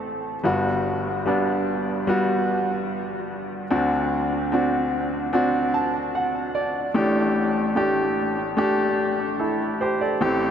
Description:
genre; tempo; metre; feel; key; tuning
pop; 74 BPM; 4/4; straight; unclear; A4 = 436 Hz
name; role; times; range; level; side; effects
clear grand piano; solo; 0.0-10.5 s; G1 to A5; -21 LUFS; equal; tape echo
room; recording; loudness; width
wet huge ambient reverb, RT60 4.8 s; dreamy mix soaked in reverb; -21 LUFS; side -8 dB against mid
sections
0.0-10.5 A section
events
grand piano fill 5.3-7.0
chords
0.4 Gmaj7; 3.7 D7; 7.0 A7sus4

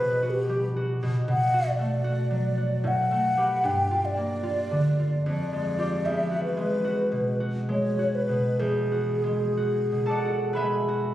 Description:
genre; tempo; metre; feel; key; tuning
classical, impressionist duo for flute and harp; 57-78 BPM; 3/4; rubato; unclear; A4 = 442 Hz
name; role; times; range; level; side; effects
mellow hollow concert flute; melody; 0.0-11.0 s; G4 to G5; -26 LUFS; equal; none
concert harp; accompaniment; 0.0-11.1 s; E2 to B5; -26 LUFS; equal; none
room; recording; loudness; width
moderate scoring stage reverb, RT60 1.7 s; recorded on a phone in the room, studio reverb, compression; -23 LUFS; side -13 dB against mid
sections
0.0-11.1 A section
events
none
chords
0.0 Emadd9; 1.3 Bm7; 2.9 Asus2; 3.6 Gm9; 5.3 Fmadd9; 6.0 Eadd9

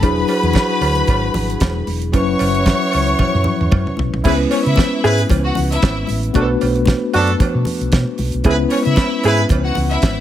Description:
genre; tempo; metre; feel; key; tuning
disco; 114 BPM; 4/4; swing 56% on 16ths; unclear; A4 = 440 Hz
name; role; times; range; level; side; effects
clear studio string section; second line; 0.0-10.2 s; C#4 to C#6; -22 LUFS; left 2 dB; none
mellow tine electric piano; accompaniment; 0.0-10.2 s; F#3 to B4; -20 LUFS; left 2 dB; medium stereo tremolo
warm horn section; stabs; 0.0-9.4 s; D4 to C#5; -21 LUFS; right 2 dB; none
hollow-body short-scale fingered electric bass; bass; 0.0-10.2 s; E1 to C#3; -19 LUFS; equal; none
damped 70s drum kit; drums; 0.0-10.2 s; crash cymbal, hi-hat, kick drum, snare drum, toms; -19 LUFS; right 1 dB; none
congas; percussion; 0.0-10.2 s; none; -27 LUFS; left 3 dB; none
cowbell; percussion; 0.0-10.2 s; none; -30 LUFS; right 8 dB; none
room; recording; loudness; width
light reverb, small room ambience; none; -14 LUFS; side -11 dB against mid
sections
0.0-4.2 A section; 4.2-10.2 B section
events
drum fill 3.2-4.2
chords
0.0 E9; 2.1 F#7sus4; 4.2 C#m7; 6.3 Bm7; 8.4 C#m7

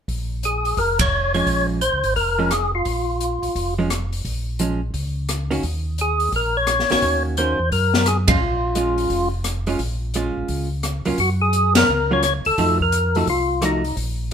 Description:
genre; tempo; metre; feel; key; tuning
soul jazz organ trio; 173 BPM; 4/4; swing 64% on 8ths; Bb minor; A4 = 442 Hz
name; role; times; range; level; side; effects
mellow tonewheel organ; bass; 0.1-14.3 s; F1 to Gb2; -24 LUFS; equal; slow rotary speaker
open jazz drum kit; drums; 0.1-14.1 s; hi-hat, kick drum, ride cymbal, rim click, snare drum; -25 LUFS; left 1 dB; none
percussive tonewheel organ; melody; 0.5-3.7, 6.0-14.0 s; Eb4 to Db5; -20 LUFS; left 1 dB; slow rotary speaker, overdrive
hollow-body jazz guitar; accompaniment; 1.3-13.8 s; Eb3 to Gb4; -24 LUFS; right 2 dB; none
room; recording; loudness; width
moderate studio reverb, RT60 0.8 s; minimal, uncompressed stereo recording; -18 LUFS; side -8 dB against mid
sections
0.1-14.3 A section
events
band accent 0.9, 8.2, 11.7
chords
0.1 Bbm7; 5.6 Ebm7; 8.4 Bbm7; 11.2 Gb; 12.6 F7b9

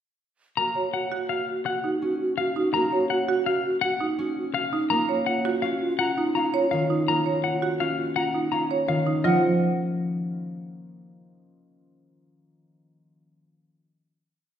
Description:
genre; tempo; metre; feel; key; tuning
classical, minimalist pattern music; 166 BPM; 6/4; straight; Eb minor; A4 = 440 Hz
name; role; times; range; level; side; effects
semi-hollow electric guitar; melody; 0.6-9.4 s; Eb5 to Bb5; -27 LUFS; left 4 dB; none
mellow hollow wooden-headed alto flute; second line; 0.6-9.0 s; F4 to Gb4; -28 LUFS; right 1 dB; none
concert harp; accompaniment; 0.6-11.4 s; Eb3 to Db4; -29 LUFS; left 1 dB; none
marimba with medium hard mallets; arpeggios; 0.8-9.4 s; Eb4 to Db5; -28 LUFS; right 4 dB; none
silver concert flute; arpeggios; 6.0-9.4 s; F5 to Bb5; -31 LUFS; left 3 dB; none
room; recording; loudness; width
wet recital hall reverb, RT60 1.6 s; heard from further back in the room; -22 LUFS; side -9 dB against mid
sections
0.6-9.2 A section; 9.2-11.4 final chord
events
none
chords
0.6 Ebm7; 4.9 Gbmaj7; 9.2 Eb7(no3) (rootless)

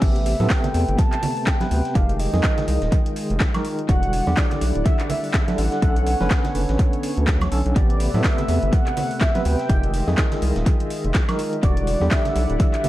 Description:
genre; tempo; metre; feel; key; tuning
deep house; 124 BPM; 4/4; swing 58% on 16ths; unclear; A4 = 439 Hz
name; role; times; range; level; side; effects
warm velvety synth lead; melody; 0.0-12.9 s; D5 to A5; -28 LUFS; equal; chorus, dub echo
warm analog pad; sustained chords; 0.0-12.9 s; D3 to G5; -32 LUFS; left 1 dB; chorus, sidechain pumping
overdriven tine electric piano; stabs; 0.0-12.9 s; C3 to B4; -27 LUFS; equal; fast tremolo, sidechain pumping, analog delay
round analog bass; bass; 0.0-12.6 s; D1 to A2; -22 LUFS; equal; sidechain pumping
breakbeat sampler-style drum kit; drums; 0.0-12.9 s; hi-hat, snare drum; -40 LUFS; right 1 dB; none
deep house drum kit; drums; 0.0-12.9 s; crash cymbal, handclaps, hi-hat, woodblock; -29 LUFS; equal; overdrive, tape echo
electronic kick drum; drums; 0.0-12.7 s; none; -20 LUFS; equal; overdrive
congas; percussion; 0.4-12.9 s; none; -29 LUFS; right 3 dB; none
room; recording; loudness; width
digital ambience; echo-heavy mix; -18 LUFS; side -15 dB against mid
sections
0.0-12.9 A section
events
none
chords
0.0 Am9; 2.0 Fm9; 3.9 Em9; 5.8 Bm9; 7.8 Am9; 9.7 Fm9; 11.6 Em9

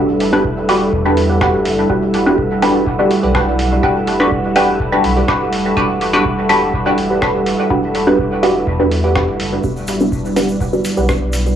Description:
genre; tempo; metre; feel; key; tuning
dub techno; 124 BPM; 4/4; straight; E minor; A4 = 439 Hz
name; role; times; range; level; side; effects
dark analog pad; sustained chords; 0.0-11.6 s; G3 to F#5; -19 LUFS; equal; chorus, sidechain pumping, cassette tape
filtered dub chord stab; stabs; 0.0-11.3 s; D4 to B4; -15 LUFS; equal; phaser, sidechain pumping, cassette tape, dub echo
soft dub sub bass; bass; 0.0-11.5 s; E1 to E2; -22 LUFS; equal; sidechain pumping
wind-like tuned noise texture; texture; 0.0-9.7 s; E5; -32 LUFS; right 2 dB; built-in reverb, sidechain pumping, cassette tape
lo-fi sampler-style drum kit; drums; 0.2-11.4 s; hi-hat, rim click; -26 LUFS; equal; none
electronic kick drum; drums; 0.4-11.2 s; none; -23 LUFS; equal; none
wavetable chord stab; riff; 0.7-11.1 s; G4 to F#5; -25 LUFS; right 2 dB; sidechain pumping, cassette tape, dub echo
egg shaker; percussion; 9.6-11.6 s; none; -32 LUFS; left 2 dB; none
room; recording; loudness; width
wet spring reverb, RT60 1.5 s; home recording on cassette, small room ambience; -12 LUFS; side -9 dB against mid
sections
0.0-9.6 A section; 9.6-11.6 A section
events
none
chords
0.0 Em7

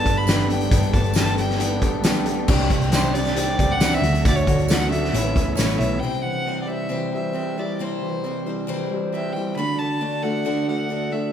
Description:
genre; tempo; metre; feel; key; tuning
folk rock and heartland rock; 135 BPM; 4/4; straight; unclear; A4 = 440 Hz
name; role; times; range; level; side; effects
clear fiddle; melody; 0.0-11.3 s; C5 to B5; -27 LUFS; equal; none
picked steel-string acoustic guitar; accompaniment; 0.0-11.3 s; G2 to C5; -28 LUFS; left 4 dB; none
bright tonewheel organ; sustained chords; 0.0-6.0 s; A3 to C5; -35 LUFS; equal; none
electric guitar through a small old amp; riff; 0.0-11.3 s; A2 to A4; -26 LUFS; right 2 dB; none
hollow-body short-scale picked electric bass; bass; 0.1-6.0 s; G1 to D2; -24 LUFS; equal; none
loose indie drum kit; drums; 0.1-5.9 s; crash cymbal, hi-hat, kick drum, snare drum; -22 LUFS; equal; none
tambourine; percussion; 0.3-5.7 s; none; -36 LUFS; right 6 dB; none
room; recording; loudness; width
moderate recital hall reverb, RT60 1.4 s; recorded in a church or concert hall; -19 LUFS; side -9 dB against mid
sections
0.0-6.0 A section; 6.0-11.3 B section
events
none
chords
0.0 Gadd9; 2.5 Csus2; 4.0 D; 5.1 Aadd9; 6.0 C; 9.6 D

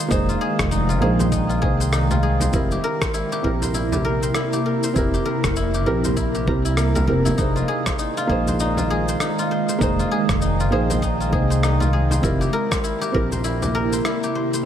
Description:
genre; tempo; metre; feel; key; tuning
organic downtempo; 99 BPM; 4/4; swing 60% on 16ths; F minor; A4 = 438 Hz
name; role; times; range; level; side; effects
felt-muted upright piano; accompaniment; 0.0-14.7 s; Bb3 to C5; -26 LUFS; right 3 dB; sidechain pumping, tape echo, shimmer reverb
ethereal airy pad; sustained chords; 0.0-14.7 s; C3 to G5; -26 LUFS; right 1 dB; ensemble chorus, built-in reverb, sidechain pumping
guzheng; arpeggios; 0.0-14.7 s; Eb4 to Bb5; -25 LUFS; left 1 dB; tape echo, shimmer reverb
upright bass; bass; 0.1-14.0 s; F1 to C2; -22 LUFS; equal; tube saturation, sidechain pumping
electronic kick drum; drums; 0.1-13.3 s; none; -25 LUFS; equal; none
electronic shaker and rim click; drums; 0.1-14.6 s; none; -28 LUFS; left 1 dB; none
frame drum; percussion; 1.2-13.7 s; none; -29 LUFS; right 1 dB; none
room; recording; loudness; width
light reverb; none; -18 LUFS; side -10 dB against mid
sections
0.0-14.7 A section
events
none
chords
0.0 Fm7; 2.5 C7/F; 7.4 Fm7; 12.2 C7/F

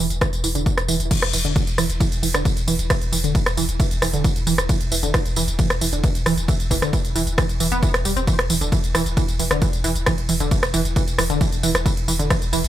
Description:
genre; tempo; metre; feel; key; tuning
driving peak-time techno; 134 BPM; 4/4; straight; unclear; A4 = 441 Hz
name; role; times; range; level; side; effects
tight sequenced synth; riff; 0.0-12.6 s; D3 to C4; -24 LUFS; right 3 dB; chorus, tube saturation, sidechain pumping, tape echo
saturated sub bass; bass; 0.0-12.7 s; E1; -26 LUFS; equal; sidechain pumping, low-pass filter
techno drum kit; drums; 0.1-12.7 s; crash cymbal, hi-hat, ride cymbal, rim click, tambourine; -23 LUFS; equal; sidechain pumping on hats, sidechain pumping on perc, sidechain pumping on cymbals
electronic kick drum; drums; 0.2-12.4 s; none; -22 LUFS; equal; none
room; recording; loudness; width
light reverb; none; -18 LUFS; side -12 dB against mid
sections
0.0-1.1 A section; 1.1-12.7 B section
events
drop 1.1-12.7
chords
none

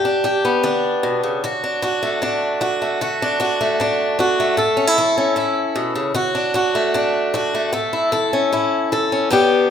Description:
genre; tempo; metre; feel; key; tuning
country; 152 BPM; 4/4; straight; D major; A4 = 439 Hz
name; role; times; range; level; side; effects
picked swing-style acoustic guitar; solo; 0.0-9.7 s; G2 to A4; -16 LUFS; equal; none
room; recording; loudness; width
wet large studio reverb, RT60 1.2 s; band playing live in one room; -16 LUFS; side -8 dB against mid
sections
0.0-9.3 A section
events
none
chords
0.0 G; 1.4 D; 4.6 A; 6.2 D; 7.7 A

